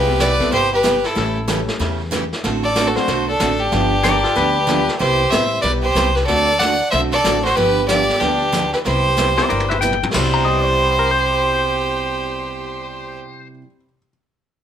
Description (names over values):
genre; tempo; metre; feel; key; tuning
country, western swing; 187 BPM; 4/4; swing 64% on 8ths; C major; A4 = 440 Hz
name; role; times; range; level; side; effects
clear fiddle; melody; 0.0-13.2 s; G4 to F#5; -18 LUFS; equal; none
clear fiddle; second line; 0.0-13.2 s; D4 to D5; -24 LUFS; right 4 dB; none
clear upright piano; accompaniment; 0.0-14.1 s; B2 to G6; -27 LUFS; left 5 dB; none
picked steel-string acoustic guitar; accompaniment; 0.0-13.7 s; C3 to A4; -23 LUFS; right 3 dB; none
upright bass; bass; 0.0-13.2 s; G1 to E2; -24 LUFS; left 1 dB; none
vintage brush drum kit; drums; 0.2-10.2 s; brushed snare drum, crash cymbal, hi-hat, kick drum, snare drum, toms; -25 LUFS; equal; none
clean lap steel guitar; second line; 4.0-4.9, 9.4-13.5 s; F4 to Bb5; -22 LUFS; left 6 dB; none
room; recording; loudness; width
light reverb; none; -15 LUFS; side -9 dB against mid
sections
0.0-10.1 A section; 10.1-12.7 B section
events
drum fill 9.5-10.1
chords
0.0 Cmaj7; 1.2 A7; 2.4 D7/A; 3.7 G7; 5.0 Cmaj7; 6.3 D7; 7.6 G7; 8.9 Cmaj7